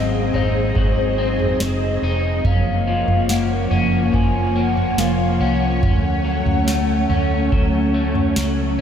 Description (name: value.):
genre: dream pop.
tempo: 71 BPM.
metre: 4/4.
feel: straight.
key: Gb lydian.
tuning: A4 = 440 Hz.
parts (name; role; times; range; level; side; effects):
warbly nostalgic lead; melody; 0.0-8.3 s; C5 to Ab5; -25 LUFS; left 2 dB; chorus, tremolo, ping-pong delay.
string machine, violas; sustained chords; 0.0-8.8 s; F3 to Eb5; -22 LUFS; equal; ensemble chorus.
electric guitar at the edge of break-up; arpeggios; 0.0-8.8 s; Ab2 to Eb4; -24 LUFS; left 4 dB; lush chorus, ping-pong delay.
vintage muted fingered electric bass; bass; 0.0-8.8 s; F1 to D2; -22 LUFS; equal; none.
booming analog drum machine; drums; 0.3-8.6 s; kick drum, snare drum, toms; -23 LUFS; right 1 dB; none.
room: wet cathedral reverb, RT60 6.4 s.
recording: dreamy mix soaked in reverb.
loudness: -16 LUFS.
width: side -8 dB against mid.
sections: 0.0-8.8 A section.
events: none.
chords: 0.0 Ab7; 2.4 Gbmaj7; 5.8 Dmaj7.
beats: 0.76 1.60 | 2.45 3.29 4.14 4.98 | 5.83 6.67 7.52 8.36.